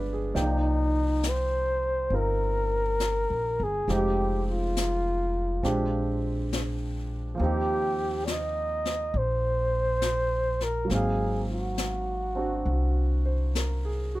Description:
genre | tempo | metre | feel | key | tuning
jazz ballad | 68 BPM | 4/4 | swing 66% on 8ths | C minor | A4 = 439 Hz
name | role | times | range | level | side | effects
warm grand piano | accompaniment | 0.0-14.2 s | F3 to G5 | -32 LUFS | right 2 dB | none
upright bass | bass | 0.0-14.2 s | F1 to Eb2 | -29 LUFS | equal | none
breathy flugelhorn | melody | 0.4-13.2 s | Eb4 to Eb5 | -28 LUFS | equal | none
jazz brush drum kit | drums | 0.4-14.2 s | brushed snare drum, hi-hat, snare drum | -36 LUFS | left 4 dB | none
room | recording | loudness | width
little or no reverb | none | -25 LUFS | side -17 dB against mid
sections
0.4-14.2 A section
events
none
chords
0.4 Cm11; 3.9 Fm9; 5.6 Bb13; 7.4 Eb6; 10.9 Ab13

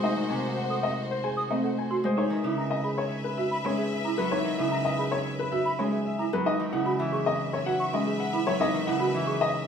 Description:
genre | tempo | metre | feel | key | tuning
classical, minimalist pattern music | 112 BPM | 4/4 | straight | unclear | A4 = 440 Hz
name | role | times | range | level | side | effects
warm grand piano | melody | 0.0-9.6 s | B4 to G#5 | -30 LUFS | left 4 dB | none
Celtic harp | accompaniment | 0.0-9.7 s | B#2 to A3 | -30 LUFS | right 1 dB | none
clear studio string section | sustained chords | 0.0-9.7 s | F#4 to E5 | -35 LUFS | left 2 dB | none
folk marimba with medium mallets | arpeggios | 0.0-9.4 s | B#3 to A4 | -31 LUFS | right 2 dB | none
mellow silver concert flute | arpeggios | 0.7-9.3 s | E5 to D#6 | -34 LUFS | equal | none
room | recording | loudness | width
wet large studio reverb, RT60 0.9 s | heard from further back in the room | -25 LUFS | side -7 dB against mid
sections
0.0-9.7 A section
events
none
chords
0.0 G#7b9; 2.2 C#m11; 6.5 F#9sus4

